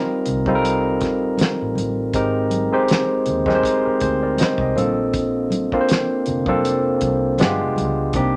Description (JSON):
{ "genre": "R&B, neo-soul", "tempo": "80 BPM", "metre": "4/4", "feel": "swing 56% on 16ths", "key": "Bb major", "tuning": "A4 = 440 Hz", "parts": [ { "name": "barky tine electric piano", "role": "accompaniment", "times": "0.0-8.4 s", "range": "G3 to G5", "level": "-21 LUFS", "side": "equal", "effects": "overdrive" }, { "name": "vintage muted fingered electric bass", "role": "bass", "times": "0.3-8.4 s", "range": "F1 to Eb2", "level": "-29 LUFS", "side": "equal", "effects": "none" }, { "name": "cloth-damped thuddy drum kit", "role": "drums", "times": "0.3-8.3 s", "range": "hi-hat, kick drum, snare drum", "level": "-25 LUFS", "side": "equal", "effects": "none" }, { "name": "congas", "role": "percussion", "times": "0.3-8.3 s", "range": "none", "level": "-32 LUFS", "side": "equal", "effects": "none" } ], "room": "moderate studio ambience, RT60 0.5 s", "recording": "none", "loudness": "-20 LUFS", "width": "mono", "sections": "0.0-8.4 A section", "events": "none", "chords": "0.0 F9sus4; 2.1 Abmaj9; 4.8 Bbmaj9; 7.4 G7b9" }